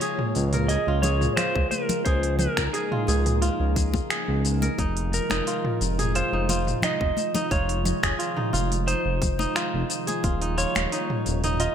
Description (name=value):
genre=organic downtempo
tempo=88 BPM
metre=4/4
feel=straight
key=F minor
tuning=A4 = 440 Hz
part: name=clean lap steel guitar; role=melody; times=0.0-11.7 s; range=Ab4 to Eb5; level=-29 LUFS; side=right 1 dB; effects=digital delay
part: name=airy breathy pad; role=sustained chords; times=0.0-11.7 s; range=C3 to F4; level=-32 LUFS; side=equal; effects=chorus, sidechain pumping
part: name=kora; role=arpeggios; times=0.0-11.7 s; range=Eb4 to Bb4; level=-30 LUFS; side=equal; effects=ping-pong delay
part: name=organic electronic drum kit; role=drums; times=0.0-11.7 s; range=finger snaps, hi-hat, shaker, toms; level=-29 LUFS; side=equal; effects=gated reverb
part: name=smooth synth bass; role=bass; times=0.4-11.7 s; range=Eb1 to Db2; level=-25 LUFS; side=equal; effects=sidechain pumping
part: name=congas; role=percussion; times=1.0-10.9 s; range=none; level=-32 LUFS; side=left 2 dB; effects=none
part: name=electronic kick drum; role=drums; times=1.6-10.4 s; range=none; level=-26 LUFS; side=equal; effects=none
room=light reverb, digital ambience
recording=bright 1980s-style digital production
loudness=-22 LUFS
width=side -8 dB against mid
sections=0.0-11.7 A section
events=none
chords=0.0 Bbm7/Db; 4.8 Fm7; 10.2 Ebadd9